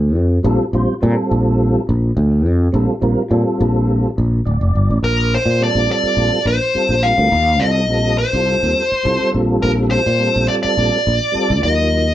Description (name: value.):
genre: jazz.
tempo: 105 BPM.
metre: 4/4.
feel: straight.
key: Bb major.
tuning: A4 = 440 Hz.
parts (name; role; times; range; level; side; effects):
sustaining fretless electric bass; bass; 0.0-12.1 s; D1 to Bb2; -16 LUFS; equal; none.
mellow tonewheel organ; accompaniment; 0.4-12.1 s; Gb3 to D5; -20 LUFS; right 1 dB; slow rotary speaker, chorus vibrato.
dark smooth lead guitar; melody; 5.0-12.1 s; Bb4 to F5; -16 LUFS; equal; overdrive.
room: wet studio reverb, RT60 0.5 s.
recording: band playing live in one room.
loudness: -14 LUFS.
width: side -13 dB against mid.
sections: 0.0-5.0 A section; 5.0-12.1 B section.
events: tonewheel organ fill 4.2-5.0.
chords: 0.0 Bbmaj7; 5.0 Bbmaj9; 7.3 Eb69; 9.3 Bbmaj9; 11.6 Ebmadd9.